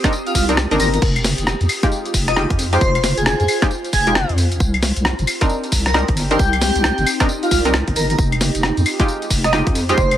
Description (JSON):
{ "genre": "UK garage, two-step garage", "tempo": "134 BPM", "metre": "4/4", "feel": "swing 62% on 16ths", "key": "F minor", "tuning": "A4 = 440 Hz", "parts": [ { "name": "punchy chord stab", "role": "stabs", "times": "0.0-10.0 s", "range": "Ab3 to Bb4", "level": "-21 LUFS", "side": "equal", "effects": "chorus, dub echo" }, { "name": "breakbeat sampler-style drum kit", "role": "drums", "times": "0.0-10.2 s", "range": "claves, crash cymbal, hi-hat, rim click, snare drum, tambourine", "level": "-21 LUFS", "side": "left 1 dB", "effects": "none" }, { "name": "electronic kick drum", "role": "drums", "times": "0.0-10.1 s", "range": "none", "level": "-19 LUFS", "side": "equal", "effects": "none" }, { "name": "ethereal airy pad", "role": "texture", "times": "0.0-10.2 s", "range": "C4 to Eb6", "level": "-27 LUFS", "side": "right 1 dB", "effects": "ensemble chorus, built-in reverb, phaser, sidechain pumping" }, { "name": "airy dreamy lead", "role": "melody", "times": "0.3-10.2 s", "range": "F4 to Eb5", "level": "-21 LUFS", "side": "equal", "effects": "chorus, phaser, dub echo" }, { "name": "deep soft wobble bass", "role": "bass", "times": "0.3-10.2 s", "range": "F1 to F2", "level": "-20 LUFS", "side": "equal", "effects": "chorus" } ], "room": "digital ambience", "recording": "none", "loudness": "-15 LUFS", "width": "side -11 dB against mid", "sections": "0.0-10.2 A section", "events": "none", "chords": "0.0 Cm9; 1.0 Fm9; 4.6 Cm9; 8.2 Fm9" }